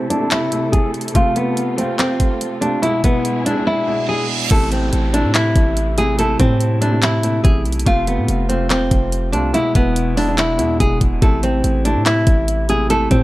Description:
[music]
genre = hip hop, trap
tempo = 143 BPM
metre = 4/4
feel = half-time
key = A harmonic minor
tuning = A4 = 438 Hz
[part]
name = nylon-string guitar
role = melody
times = 0.0-13.2 s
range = B3 to A4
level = -19 LUFS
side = equal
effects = low-pass filter, tape echo
[part]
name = warm concert grand piano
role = accompaniment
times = 0.0-13.2 s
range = B2 to F4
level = -22 LUFS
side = right 1 dB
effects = low-pass filter
[part]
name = dark symphonic string section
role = sustained chords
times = 0.0-4.5 s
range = B2 to A4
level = -27 LUFS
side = equal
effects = low-pass filter
[part]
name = trap drum kit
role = drums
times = 0.1-13.2 s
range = crash cymbal, handclaps, hi-hat, kick drum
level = -18 LUFS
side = equal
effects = none
[part]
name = reverse cymbal and downlifter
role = sound effects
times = 3.9-7.9 s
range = none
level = -28 LUFS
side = right 4 dB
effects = none
[part]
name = hard-hitting 808-style bass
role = bass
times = 4.5-13.2 s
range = E1 to A2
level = -19 LUFS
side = equal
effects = none
[sound]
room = light reverb, small room ambience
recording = none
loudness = -14 LUFS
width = side -17 dB against mid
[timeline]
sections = 0.0-4.5 A section; 4.5-13.2 B section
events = filter sweep 0.0-4.5; reverse cymbal 3.9-4.5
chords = 0.0 Am; 1.2 F; 2.8 E; 4.5 Am; 7.9 F; 9.5 E; 11.2 Am

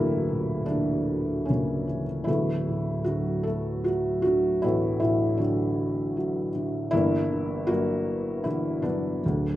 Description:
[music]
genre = classical, lyrical solo piano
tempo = 77 BPM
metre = 3/4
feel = rubato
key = unclear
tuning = A4 = 440 Hz
[part]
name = felt-muted upright piano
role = solo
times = 0.0-9.6 s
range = D1 to Bb4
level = -24 LUFS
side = equal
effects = none
[sound]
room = light reverb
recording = close, detailed microphones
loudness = -24 LUFS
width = side -14 dB against mid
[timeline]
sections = 0.0-9.6 A section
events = none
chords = 0.0 Gm6; 2.3 D69; 6.9 Gm6

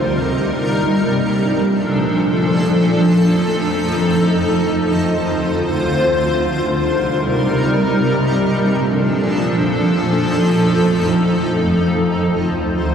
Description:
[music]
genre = hip hop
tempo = free time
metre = none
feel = none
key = unclear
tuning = A4 = 441 Hz
[part]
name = granular cloud pad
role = solo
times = 0.0-12.9 s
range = D2 to C5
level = -14 LUFS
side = equal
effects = built-in reverb, ping-pong delay
[sound]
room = moderate huge ambient reverb, RT60 4.3 s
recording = none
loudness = -14 LUFS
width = side -7 dB against mid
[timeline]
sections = 0.0-12.9 A section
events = none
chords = 0.0 Cm7; 0.8 Bbmaj7; 2.6 F7; 4.4 Dm7; 6.2 Cm7; 8.1 Bbmaj7; 9.9 F7; 11.7 Dm7

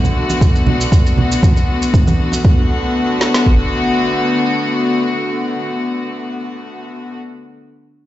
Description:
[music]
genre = afro house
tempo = 118 BPM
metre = 4/4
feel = swing 53% on 16ths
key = B minor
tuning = A4 = 439 Hz
[part]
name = rich chamber string section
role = sustained chords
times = 0.0-7.2 s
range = D3 to F#4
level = -17 LUFS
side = left 1 dB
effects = sidechain pumping
[part]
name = shaker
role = drums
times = 0.0-2.4 s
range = none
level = -26 LUFS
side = right 3 dB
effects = overdrive
[part]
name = congas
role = percussion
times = 0.0-2.4 s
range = none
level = -18 LUFS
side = right 2 dB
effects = none
[part]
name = afro-pop drum kit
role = drums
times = 0.4-3.6 s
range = kick drum, snare drum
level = -12 LUFS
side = equal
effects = none
[sound]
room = light reverb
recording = played on a big sound system in a bare room, large studio reverb, nothing above 7.8 kHz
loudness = -13 LUFS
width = side -14 dB against mid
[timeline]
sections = 0.0-2.4 A section; 2.4-6.5 B section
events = none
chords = 0.0 Bm7

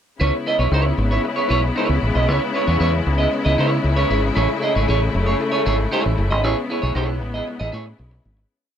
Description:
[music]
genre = disco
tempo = 116 BPM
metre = 4/4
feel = straight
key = unclear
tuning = A4 = 440 Hz
[part]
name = clean electric guitar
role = accompaniment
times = 0.2-8.4 s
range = E4 to D#5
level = -22 LUFS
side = right 3 dB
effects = vibrato effect
[part]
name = clear studio string section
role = sustained chords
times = 0.2-8.5 s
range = C#3 to E4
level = -23 LUFS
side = left 4 dB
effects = none
[part]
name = fingered electric bass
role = bass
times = 0.2-8.4 s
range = F#1 to C#3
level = -20 LUFS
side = equal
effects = none
[sound]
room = little or no reverb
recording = none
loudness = -17 LUFS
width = side -9 dB against mid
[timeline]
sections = 0.2-8.5 groove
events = fade-out 6.4-8.5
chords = 0.2 C#m7; 4.4 Amaj7

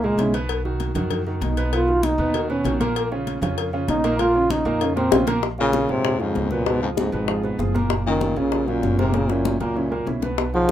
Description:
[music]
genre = Afro-Cuban jazz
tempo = 194 BPM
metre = 4/4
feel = straight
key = Bb minor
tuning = A4 = 442 Hz
[part]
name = mellow trombone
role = melody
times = 0.0-10.7 s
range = Ab2 to F4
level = -22 LUFS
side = right 1 dB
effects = none
[part]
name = warm concert grand piano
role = accompaniment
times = 0.0-10.7 s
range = Bb2 to F#5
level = -26 LUFS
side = right 2 dB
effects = none
[part]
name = upright bass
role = bass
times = 0.0-10.7 s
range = Gb1 to F#2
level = -27 LUFS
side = equal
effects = none
[part]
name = congas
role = percussion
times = 0.0-10.7 s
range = none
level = -30 LUFS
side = left 1 dB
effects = none
[part]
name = cowbell and bongos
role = percussion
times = 0.2-10.7 s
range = none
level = -27 LUFS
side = left 7 dB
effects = none
[part]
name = breathy baritone saxophone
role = second line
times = 5.6-10.7 s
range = F2 to C#3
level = -28 LUFS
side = left 6 dB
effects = none
[sound]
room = light reverb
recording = minimal, uncompressed stereo recording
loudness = -19 LUFS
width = side -11 dB against mid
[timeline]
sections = 0.0-5.4 A section; 5.4-10.7 B section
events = trombone solo 0.0-5.4; drum fill 5.0-5.4, 9.1-10.4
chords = 0.5 B; 1.7 Badd9; 3.0 Bbm; 5.4 Bbm9; 6.7 Db7; 7.9 Gbmaj7; 9.1 Gb7

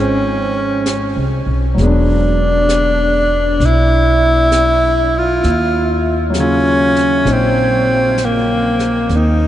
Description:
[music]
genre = jazz ballad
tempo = 66 BPM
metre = 4/4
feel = swing 66% on 8ths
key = unclear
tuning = A4 = 441 Hz
[part]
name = breathy tenor saxophone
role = melody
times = 0.0-9.5 s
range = Bb3 to F4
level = -14 LUFS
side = equal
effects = none
[part]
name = warm grand piano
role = accompaniment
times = 0.0-9.5 s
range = Db3 to C5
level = -21 LUFS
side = left 2 dB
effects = none
[part]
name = upright bass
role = bass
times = 0.0-9.5 s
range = E1 to Eb2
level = -17 LUFS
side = equal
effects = none
[part]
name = jazz brush drum kit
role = drums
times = 0.9-9.5 s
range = brushed snare drum, hi-hat, snare drum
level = -29 LUFS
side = left 1 dB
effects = none
[sound]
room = wet huge ambient reverb, RT60 7.8 s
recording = in a vast, echoing space, nothing above 10.5 kHz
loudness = -12 LUFS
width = side -12 dB against mid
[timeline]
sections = 0.0-9.5 A section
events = none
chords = 0.0 Dbmaj7; 1.8 E9; 5.4 Ebm9

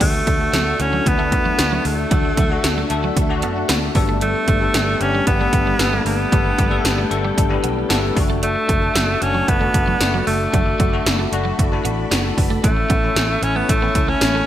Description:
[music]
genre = 1980s-style pop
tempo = 114 BPM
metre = 4/4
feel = straight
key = D major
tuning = A4 = 440 Hz
[part]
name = bright alto saxophone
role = melody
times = 0.0-14.5 s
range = A3 to C#4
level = -21 LUFS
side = right 1 dB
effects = none
[part]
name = bell-like tine electric piano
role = accompaniment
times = 0.0-14.5 s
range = G3 to A5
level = -23 LUFS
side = left 5 dB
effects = ensemble chorus
[part]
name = soft string machine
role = sustained chords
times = 0.0-14.5 s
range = D4 to B5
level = -29 LUFS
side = equal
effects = phaser, ensemble chorus
[part]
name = twelve-string electric guitar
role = riff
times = 0.0-14.4 s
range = F#3 to D4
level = -29 LUFS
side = right 6 dB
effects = tube saturation, analog chorus, digital delay
[part]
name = vintage muted fingered electric bass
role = bass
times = 0.0-14.4 s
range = F#1 to F#2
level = -24 LUFS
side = equal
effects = none
[part]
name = 80s electronic pad drums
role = drums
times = 0.0-14.3 s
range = crash cymbal, hi-hat, kick drum, snare drum, tambourine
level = -20 LUFS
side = equal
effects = overdrive, gated reverb
[sound]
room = light reverb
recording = bright 1980s-style digital production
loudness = -16 LUFS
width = side -12 dB against mid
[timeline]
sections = 0.0-14.5 A section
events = none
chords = 0.0 D; 4.0 Gadd9; 8.2 D/F#; 12.6 A

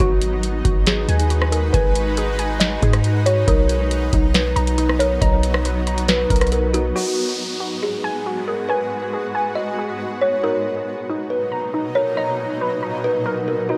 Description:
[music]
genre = hip hop, atmospheric cloud-rap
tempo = 138 BPM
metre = 4/4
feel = half-time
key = G# minor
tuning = A4 = 441 Hz
[part]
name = kalimba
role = melody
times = 0.0-13.8 s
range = F#4 to D#5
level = -25 LUFS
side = equal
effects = low-pass filter, delay
[part]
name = shimmering ambient pad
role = sustained chords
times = 0.0-13.8 s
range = G#2 to B4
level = -29 LUFS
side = equal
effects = chorus, built-in reverb, sidechain pumping
[part]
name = warbly dusty pluck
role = arpeggios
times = 0.0-13.8 s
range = D#4 to A#5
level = -29 LUFS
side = equal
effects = chorus, low-pass filter, delay
[part]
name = warm 808-style bass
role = bass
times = 0.0-6.9 s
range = G#1 to G#2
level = -23 LUFS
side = equal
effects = none
[part]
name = booming analog drum machine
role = drums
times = 0.0-6.8 s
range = hi-hat, kick drum, rim click, snare drum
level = -22 LUFS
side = equal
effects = vintage 12-bit sampler grit
[part]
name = downlifter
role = sound effects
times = 7.0-10.4 s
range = none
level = -32 LUFS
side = equal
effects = none
[sound]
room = light reverb, digital ambience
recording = none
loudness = -20 LUFS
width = mono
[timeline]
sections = 0.0-7.0 A section; 7.0-13.8 B section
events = none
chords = 0.0 G#m7; 3.5 Bmaj7; 7.0 G#m7; 10.4 Bmaj7

